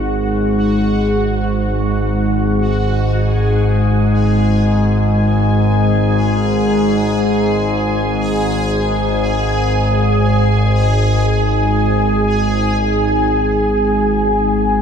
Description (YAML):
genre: dark ambient drone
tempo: free time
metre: none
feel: none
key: unclear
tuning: A4 = 440 Hz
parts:
  - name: analog drone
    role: drone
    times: 0.0-14.8 s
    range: G#1 to G#2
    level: -14 LUFS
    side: equal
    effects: chorus
  - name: bubbling stepped-filter texture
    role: texture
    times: 0.0-14.8 s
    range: F#4 to G#5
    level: -20 LUFS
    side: equal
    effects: chorus, built-in reverb
room: wet huge ambient reverb, RT60 7.7 s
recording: in a vast, echoing space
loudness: -13 LUFS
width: side -7 dB against mid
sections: 0.0-14.8 A section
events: none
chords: 0.0 F#sus2/G#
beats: free time